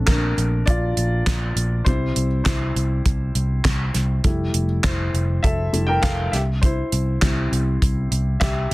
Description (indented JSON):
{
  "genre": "piano-driven pop",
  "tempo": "101 BPM",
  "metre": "4/4",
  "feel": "straight",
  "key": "unclear",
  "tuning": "A4 = 440 Hz",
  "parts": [
    { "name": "dark upright piano", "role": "accompaniment", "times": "0.0-8.7 s", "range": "G3 to G5", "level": "-25 LUFS", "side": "left 1 dB", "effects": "none" },
    { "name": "picked electric bass", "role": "bass", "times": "0.0-8.7 s", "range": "F1 to C2", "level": "-21 LUFS", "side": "equal", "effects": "none" },
    { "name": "damped 70s drum kit", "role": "drums", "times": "0.1-8.7 s", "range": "handclaps, hi-hat, kick drum, snare drum", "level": "-21 LUFS", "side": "equal", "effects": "none" }
  ],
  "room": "little or no reverb",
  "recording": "dense, heavily limited modern master",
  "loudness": "-18 LUFS",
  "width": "side -20 dB against mid",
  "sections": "0.0-8.7 A section",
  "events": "upright piano solo 0.0-8.7",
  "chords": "0.0 Bbmaj7; 1.9 C; 4.2 Fmaj7; 6.3 C"
}